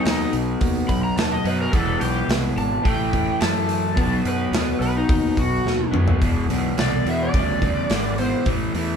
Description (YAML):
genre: blues rock power trio and southern rock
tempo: 107 BPM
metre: 4/4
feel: straight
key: E minor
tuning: A4 = 440 Hz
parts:
  - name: overdriven slide guitar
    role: melody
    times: 0.0-8.5 s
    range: D#4 to B5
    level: -25 LUFS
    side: left 1 dB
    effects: none
  - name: raw garage guitar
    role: riff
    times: 0.0-9.0 s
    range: E2 to B3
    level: -23 LUFS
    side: equal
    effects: overdrive
  - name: fuzz fingered electric bass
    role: bass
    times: 0.0-9.0 s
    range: E1 to F#2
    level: -26 LUFS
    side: right 1 dB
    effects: overdrive
  - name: big rock drum kit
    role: drums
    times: 0.1-8.9 s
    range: hi-hat, kick drum, snare drum, toms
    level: -23 LUFS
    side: equal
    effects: none
room: moderate studio reverb, RT60 0.9 s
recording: band playing live in one room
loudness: -18 LUFS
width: side -7 dB against mid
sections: 0.0-6.2 A section; 6.2-9.0 B section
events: electric slide guitar solo 0.0-6.2; drum fill 5.6-6.2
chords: 0.0 B; 1.7 E5; 2.8 A5; 4.0 B; 6.2 E5; 8.5 A5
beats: 0.04 0.60 1.16 | 1.73 2.29 2.85 3.41 | 3.97 4.53 5.09 5.65 | 6.21 6.77 7.33 7.89 | 8.46